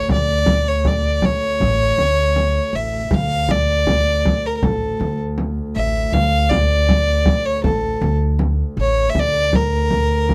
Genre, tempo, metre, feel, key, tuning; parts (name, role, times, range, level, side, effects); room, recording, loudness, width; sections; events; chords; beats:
Arabic maqam ensemble; 79 BPM; 4/4; straight; D maqam nahawand; A4 = 440 Hz
clear violin; melody; 0.0-10.3 s; A4 to F5; -21 LUFS; equal
warm double bass; drone; 0.0-10.3 s; D2; -30 LUFS; equal
upright bass; bass; 0.1-10.3 s; A1 to D2; -23 LUFS; equal
frame drum; percussion; 0.1-10.3 s; -22 LUFS; equal
light reverb; dry, close 1970s-style studio recording; -18 LUFS; mono
0.0-10.3 A section
| 0.09 0.85 1.60 2.36 | 3.11 3.87 4.62 5.38 | 6.13 6.89 7.64 8.40 | 9.15 9.91